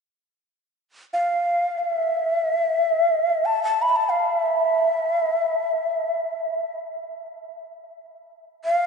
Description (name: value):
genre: japanese traditional, Japanese chamber music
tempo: free time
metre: none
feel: none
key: unclear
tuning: A4 = 440 Hz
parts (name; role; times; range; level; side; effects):
- breathy hollow shakuhachi; solo; 1.1-8.9 s; E5 to B5; -20 LUFS; equal; none
room: wet cathedral reverb, RT60 5.9 s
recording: in a vast, echoing space, nothing above 10.4 kHz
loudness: -20 LUFS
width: side -5 dB against mid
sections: 0.1-8.9 A section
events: none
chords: none